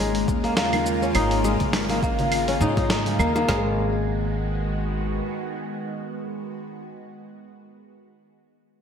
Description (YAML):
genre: organic downtempo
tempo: 103 BPM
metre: 4/4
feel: swing 55% on 16ths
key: G# dorian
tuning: A4 = 440 Hz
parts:
  - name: bowed-like drone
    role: sustained chords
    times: 0.0-6.6 s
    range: C#3 to F#4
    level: -28 LUFS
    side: equal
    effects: built-in reverb, phaser, sidechain pumping
  - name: kora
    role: arpeggios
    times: 0.0-5.5 s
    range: G#3 to D#4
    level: -25 LUFS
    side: left 1 dB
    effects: ping-pong delay
  - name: upright bass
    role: bass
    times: 0.0-5.2 s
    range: G#1 to G#2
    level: -27 LUFS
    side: equal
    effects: sidechain pumping
  - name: dusty soul sampler-style drum kit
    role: drums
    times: 0.1-3.5 s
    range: claves, hi-hat, shaker, snare drum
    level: -27 LUFS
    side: right 1 dB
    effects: gated reverb
  - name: afro-pop drum kit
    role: drums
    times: 0.3-3.6 s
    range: kick drum, snare drum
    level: -27 LUFS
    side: equal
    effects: overdrive, gated reverb
  - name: congas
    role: percussion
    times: 0.7-3.5 s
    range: none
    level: -33 LUFS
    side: left 2 dB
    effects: none
room: moderate plate reverb, RT60 1.5 s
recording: bright 1980s-style digital production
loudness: -21 LUFS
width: side -7 dB against mid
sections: 0.0-3.5 A section; 3.5-5.8 B section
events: none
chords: 0.0 C#6/G#; 3.5 G#m7